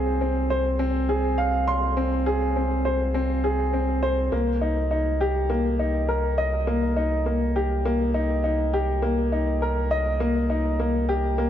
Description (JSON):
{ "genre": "piano and strings electronica", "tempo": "102 BPM", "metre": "4/4", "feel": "straight", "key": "unclear", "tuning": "A4 = 442 Hz", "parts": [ { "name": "warm upright piano", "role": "riff", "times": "0.0-11.5 s", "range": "Bb3 to C6", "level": "-23 LUFS", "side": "left 1 dB", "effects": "ping-pong delay" }, { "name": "warm sub bass", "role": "bass", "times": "0.0-11.5 s", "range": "C2", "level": "-26 LUFS", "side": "equal", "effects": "tube saturation" } ], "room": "moderate concert hall reverb, RT60 2.2 s", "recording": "none", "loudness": "-21 LUFS", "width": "side -10 dB against mid", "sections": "0.0-11.5 A section", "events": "none", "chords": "0.0 Fm/C; 4.3 Cm7" }